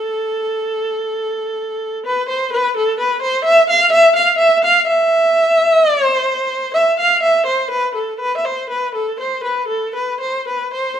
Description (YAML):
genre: japanese traditional, Japanese chamber music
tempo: 56-66 BPM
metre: 4/4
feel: rubato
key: A hirajoshi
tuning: A4 = 440 Hz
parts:
  - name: warm viola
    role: solo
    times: 0.0-11.0 s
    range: A4 to F5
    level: -14 LUFS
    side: equal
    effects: none
room: light reverb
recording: minimal, uncompressed stereo recording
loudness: -14 LUFS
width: side -9 dB against mid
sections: 0.0-11.0 A section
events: none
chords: none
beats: | 0.11 1.09 2.03 2.95 | 3.88 4.81 5.75 6.72 | 7.69 8.66 9.66 10.71